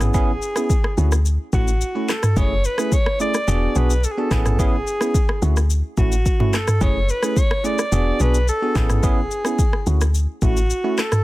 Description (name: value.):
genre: afrobeats.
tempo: 108 BPM.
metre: 4/4.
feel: straight.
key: unclear.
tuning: A4 = 440 Hz.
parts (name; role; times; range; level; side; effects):
bell-like tine electric piano; accompaniment; 0.0-11.0 s; A3 to G#4; -25 LUFS; right 2 dB; plate reverb.
deep log drum bass; bass; 0.0-10.7 s; E1 to D2; -19 LUFS; equal; none.
afro-pop drum kit; drums; 0.0-11.2 s; handclaps, kick drum, rim click, shaker, toms; -20 LUFS; equal; none.
warm alto saxophone; melody; 0.1-11.2 s; F#4 to D5; -25 LUFS; equal; plate reverb, tape echo.
room: little or no reverb.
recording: dense, heavily limited modern master.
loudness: -17 LUFS.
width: side -18 dB against mid.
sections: 0.0-11.2 A section.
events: none.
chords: 0.0 Amaj7; 1.0 Dmaj7; 2.4 F#m7; 3.5 E7; 4.3 Amaj7; 5.4 Dmaj7; 6.8 F#m7; 7.9 E7; 8.8 Amaj7; 9.9 Dmaj7.